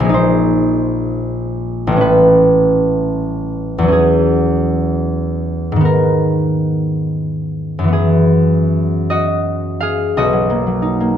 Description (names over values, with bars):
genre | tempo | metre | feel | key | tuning
classical, solo harp piece | 53-65 BPM (dotted quarters) | 6/8 | rubato | unclear | A4 = 440 Hz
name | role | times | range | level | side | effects
concert harp | solo | 0.0-11.2 s | A1 to E#5 | -13 LUFS | equal | none
room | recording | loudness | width
light reverb | none | -13 LUFS | side -9 dB against mid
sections
0.0-10.2 A section; 10.2-11.2 B section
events
none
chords
0.2 A#9sus4; 2.1 A9; 4.0 E69; 5.9 G#madd9; 8.0 F#9sus4; 10.2 Bmaj7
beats
| 0.18 1.12 | 2.05 3.02 | 3.97 4.93 | 5.89 6.91 | 7.98 9.10 | 10.16